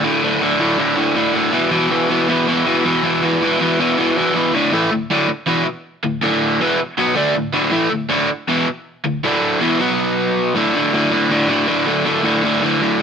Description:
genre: punk.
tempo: 160 BPM.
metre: 4/4.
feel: straight.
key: D major.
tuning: A4 = 440 Hz.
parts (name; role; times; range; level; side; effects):
overdriven electric guitar; solo; 0.0-13.0 s; D2 to D4; -15 LUFS; equal; none.
room: light reverb.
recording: band playing live in one room.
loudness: -15 LUFS.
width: side -6 dB against mid.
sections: 0.0-4.5 A section; 4.5-10.5 B section; 10.5-13.0 C section.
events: none.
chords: 0.0 D5; 1.5 E5; 4.5 D5; 9.8 B5; 10.5 D5.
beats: | 0.04 0.41 0.79 1.16 | 1.53 1.91 2.29 2.66 | 3.04 3.41 3.79 4.16 | 4.54 4.91 5.29 5.66 | 6.04 6.41 6.79 7.17 | 7.54 7.92 8.29 8.67 | 9.04 9.42 9.80 10.17 | 10.55 10.93 11.30 11.68 | 12.05 12.43 12.81.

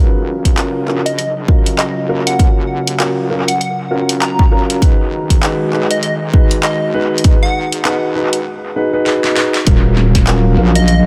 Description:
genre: glitch hop.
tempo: 99 BPM.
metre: 4/4.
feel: swing 59% on 16ths.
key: Eb minor.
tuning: A4 = 441 Hz.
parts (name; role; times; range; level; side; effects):
warbly tape-like pad; sustained chords; 0.1-11.1 s; Db3 to F5; -27 LUFS; equal; chorus, built-in reverb, sidechain pumping.
dark baby grand piano; stabs; 0.0-10.8 s; Db4 to B4; -20 LUFS; equal; sidechain pumping, analog delay.
wobble bass; bass; 0.0-11.0 s; Eb1 to E2; -21 LUFS; equal; chorus, tube saturation, high-pass filter.
electronic kick drum; drums; 0.5-10.2 s; none; -14 LUFS; equal; small room ambience.
pop drum kit; drums; 0.5-11.0 s; handclaps, hi-hat, snare drum; -23 LUFS; equal; high-pass filter on hats, small room ambience, high-pass filter on snare, analog delay.
plucky unison lead; melody; 1.1-11.0 s; Eb5 to Bb5; -24 LUFS; equal; cassette tape, analog delay.
room: light reverb.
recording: echo-heavy mix.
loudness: -14 LUFS.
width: mono.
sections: 0.0-9.7 A section; 9.7-11.1 B section.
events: build-up 0.0-9.7; filter sweep on digital synth lead 0.0-9.7; filter sweep on ambient pad 0.0-9.7; drum fill 9.1-9.7; drop 9.7-11.1.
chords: 0.0 Ebm9; 4.8 Emaj9; 9.7 Ebm9.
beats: 0.58 1.18 1.79 | 2.40 3.00 3.61 4.21 | 4.82 5.42 6.03 6.64 | 7.24 7.85 8.46 9.06 | 9.67 10.27 10.88.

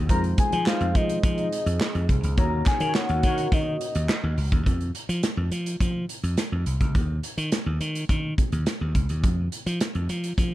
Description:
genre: early-eighties boogie funk.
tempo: 105 BPM.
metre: 4/4.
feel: straight.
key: unclear.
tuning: A4 = 439 Hz.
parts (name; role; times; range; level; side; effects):
mellow French horn section; sustained chords; 0.0-4.6 s; Eb3 to Ab4; -37 LUFS; right 1 dB; none.
slap bass; bass; 0.0-10.5 s; C2 to F3; -26 LUFS; equal; none.
soft octave-layered synth lead; melody; 0.1-4.4 s; Eb5 to Bb5; -28 LUFS; left 2 dB; chorus, tremolo.
tine electric piano; accompaniment; 0.1-3.8 s; Ab3 to Db5; -31 LUFS; left 3 dB; medium stereo tremolo.
modern studio drum kit; drums; 0.1-10.5 s; hi-hat, kick drum, snare drum; -25 LUFS; equal; none.
group handclap; percussion; 0.7-4.2 s; none; -35 LUFS; right 2 dB; none.
mellow synth brass; second line; 2.8-3.5 s; Gb4 to Db5; -35 LUFS; right 3 dB; chorus.
room: small room ambience.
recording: dark, warm production.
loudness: -22 LUFS.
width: side -15 dB against mid.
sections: 0.0-4.7 A section; 4.7-10.5 B section.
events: band accent 2.4-4.7.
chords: 0.1 Fm7; 2.4 Ebm7; 4.7 F5; 7.0 N.C.; 9.2 F5.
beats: | 0.09 0.67 1.24 1.81 | 2.38 2.95 3.52 4.09 | 4.67 5.24 5.81 6.38 | 6.95 7.52 8.09 8.67 | 9.24 9.81 10.38.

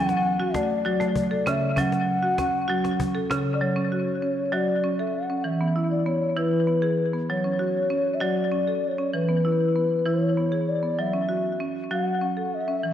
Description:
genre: world meditative, meditative tuned percussion.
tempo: 65 BPM (dotted quarters).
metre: 6/8.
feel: straight.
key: F# minor.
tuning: A4 = 440 Hz.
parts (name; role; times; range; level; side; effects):
mellow hollow bass bansuri; melody; 0.0-12.9 s; B4 to F#5; -26 LUFS; left 2 dB; ping-pong delay.
marimba with hard mallets; arpeggios; 0.0-12.9 s; C#3 to A4; -24 LUFS; right 1 dB; ping-pong delay.
cajon; percussion; 0.1-3.4 s; none; -34 LUFS; left 2 dB; none.
room: wet concert hall reverb, RT60 2.2 s.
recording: worn, warbling old tape, cassette tape, warbly pitch drift.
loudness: -22 LUFS.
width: side -10 dB against mid.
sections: 0.0-3.6 A section; 3.6-12.9 B section.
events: none.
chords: 0.0 F#m; 5.4 E; 7.3 F#m; 9.1 E; 11.0 F#m.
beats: 0.86 | 1.78 2.69 | 3.61 4.53 | 5.45 6.37 | 7.29 8.21 | 9.13 10.06 | 10.98 11.90 | 12.83.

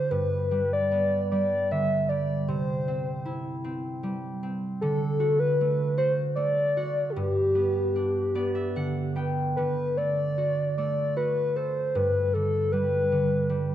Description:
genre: children's music, lullaby.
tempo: 76 BPM.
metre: 3/4.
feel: rubato.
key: G major.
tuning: A4 = 437 Hz.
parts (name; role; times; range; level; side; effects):
pure sine lead; melody; 0.0-13.7 s; G4 to E5; -26 LUFS; left 1 dB; chorus.
concert harp; accompaniment; 0.0-13.7 s; G2 to G5; -28 LUFS; right 2 dB; none.
room: moderate concert hall reverb, RT60 1.8 s.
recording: none.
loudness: -24 LUFS.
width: side -11 dB against mid.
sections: 0.0-9.6 A section; 9.6-13.7 B section.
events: harp fill 7.9-9.6.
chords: 0.1 G; 2.5 C; 4.8 D; 7.2 G; 9.6 D; 11.9 G.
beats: | 0.10 0.91 1.70 | 2.48 3.26 4.03 | 4.81 5.59 6.37 | 7.15 7.95 8.75 | 9.56 10.36 11.15 | 11.95 12.73 13.51.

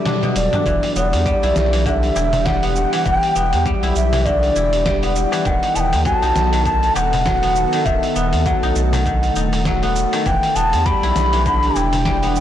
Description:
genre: organic downtempo.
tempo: 100 BPM.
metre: 4/4.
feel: swing 57% on 16ths.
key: E minor.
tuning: A4 = 440 Hz.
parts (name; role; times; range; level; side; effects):
breathy mellow bass bansuri; melody; 0.0-12.4 s; D5 to B5; -20 LUFS; equal; digital delay.
ethereal airy pad; sustained chords; 0.0-12.4 s; D#3 to A4; -25 LUFS; right 1 dB; ensemble chorus, built-in reverb, sidechain pumping.
guzheng; arpeggios; 0.0-12.4 s; B2 to E4; -22 LUFS; left 4 dB; vintage 12-bit sampler grit, tape echo.
dusty soul sampler-style drum kit; drums; 0.1-12.4 s; cabasa, hi-hat, snare drum, toms; -26 LUFS; right 1 dB; overdrive.
round analog bass; bass; 0.4-12.4 s; D#1 to E2; -20 LUFS; equal; transformer saturation, sidechain pumping.
darbuka; percussion; 0.5-12.0 s; none; -30 LUFS; left 2 dB; none.
electronic kick drum; drums; 0.7-12.2 s; none; -24 LUFS; equal; overdrive.
room: moderate lush hall reverb, RT60 1.9 s.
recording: blown-out, overdriven recording, overdrive.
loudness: -15 LUFS.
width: side -11 dB against mid.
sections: 0.7-12.4 A section.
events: drum fill 0.0-0.7; break 0.1-0.7; band accent 0.1-0.4.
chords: 0.0 Em11; 0.7 Em7; 5.5 B7/D#; 10.3 Em7.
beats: 0.06 | 0.66 1.26 1.86 2.46 | 3.06 3.66 4.26 4.86 | 5.46 6.06 6.66 7.26 | 7.86 8.46 9.06 9.66 | 10.26 10.86 11.46 12.06.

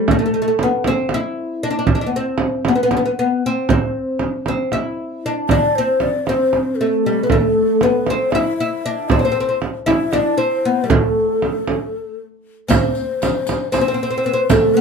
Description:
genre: Turkish makam ensemble.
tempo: 233 BPM (eighths).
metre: 7/8.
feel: straight.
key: unclear.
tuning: A4 = 441 Hz.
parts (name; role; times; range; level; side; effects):
oud; melody; 0.0-14.8 s; G3 to E4; -18 LUFS; left 1 dB; none.
frame drum; percussion; 0.1-14.6 s; none; -19 LUFS; right 4 dB; none.
breathy low ney; second line; 5.5-14.8 s; G4 to E5; -23 LUFS; left 6 dB; none.
riq; percussion; 12.7-14.8 s; none; -25 LUFS; left 1 dB; none.
room: moderate small room reverb, RT60 0.5 s.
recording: band playing live in one room.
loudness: -16 LUFS.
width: side -5 dB against mid.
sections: 0.0-12.7 A section; 12.7-14.8 B section.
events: break 11.9-12.7.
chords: none.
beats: | 0.07 0.33 0.58 0.84 1.10 1.36 1.61 | 1.87 2.13 2.39 2.65 2.90 3.16 3.42 | 3.68 3.94 4.19 4.45 4.71 4.97 5.22 | 5.48 5.74 6.00 6.25 6.51 6.77 7.03 | 7.29 7.54 7.80 8.06 8.32 8.57 8.83 | 9.09 9.35 9.60 9.86 10.12 10.38 10.63 | 10.89 11.15 11.41 11.66 11.92 12.18 12.44 | 12.69 12.95 13.21 13.46 13.72 13.98 14.24 | 14.49 14.75.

